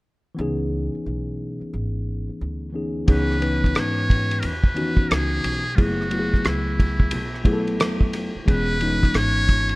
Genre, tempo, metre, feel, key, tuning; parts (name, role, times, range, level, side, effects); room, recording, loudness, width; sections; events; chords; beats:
hip hop, jazz-hop; 89 BPM; 4/4; swing 63% on 16ths; C# minor; A4 = 438 Hz
tine electric piano; accompaniment; 0.3-9.8 s; D#3 to B4; -25 LUFS; left 1 dB
upright bass; bass; 0.4-9.8 s; E1 to G#2; -26 LUFS; equal
trumpet with metal mute; melody; 3.1-9.8 s; E4 to C#5; -26 LUFS; equal
cloth-damped thuddy drum kit; drums; 3.1-9.8 s; hi-hat, kick drum, ride cymbal, rim click; -22 LUFS; equal
little or no reverb; rough home demo mix; -20 LUFS; side -22 dB against mid
0.4-3.1 A section; 3.1-9.8 B section
0.4 C#m9; 5.8 F#m11; 8.5 E6
| 0.38 1.06 1.73 2.40 | 3.08 3.75 4.43 5.10 | 5.78 6.45 7.12 7.80 | 8.47 9.15